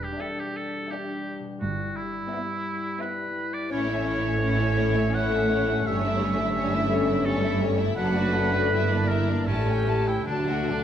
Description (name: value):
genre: classical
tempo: 73-88 BPM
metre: 3/4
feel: rubato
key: unclear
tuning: A4 = 440 Hz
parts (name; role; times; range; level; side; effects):
- clear oboe; second line; 0.0-10.8 s; C#4 to F#5; -30 LUFS; right 2 dB; none
- mellow French horn section; sustained chords; 0.0-10.8 s; G3 to G4; -31 LUFS; left 3 dB; none
- concert harp; arpeggios; 0.0-10.8 s; E2 to A4; -32 LUFS; left 9 dB; none
- rich studio cello section; bass; 0.0-10.8 s; F#2 to D3; -29 LUFS; right 3 dB; none
- warm studio double bass section; bass; 0.0-10.8 s; F#1 to D2; -30 LUFS; right 3 dB; none
- dark studio violin section; melody; 0.2-10.8 s; C#5 to A5; -34 LUFS; left 2 dB; none
- warm studio violin section; second line; 0.2-10.8 s; C#4 to G4; -35 LUFS; left 2 dB; none
- warm studio viola section; accompaniment; 0.2-10.8 s; F#3 to D4; -33 LUFS; equal; none
- timpani; percussion; 10.3-10.8 s; D3; -36 LUFS; left 1 dB; none
room: wet recital hall reverb, RT60 1.5 s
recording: none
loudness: -23 LUFS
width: side -9 dB against mid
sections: 0.0-10.8 A section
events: timpani fill 10.3-10.8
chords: 0.0 Em7; 1.6 Em/G; 3.7 A; 5.9 A7/G; 8.0 D/F#; 8.7 Em7b5/G; 9.5 A7; 10.3 D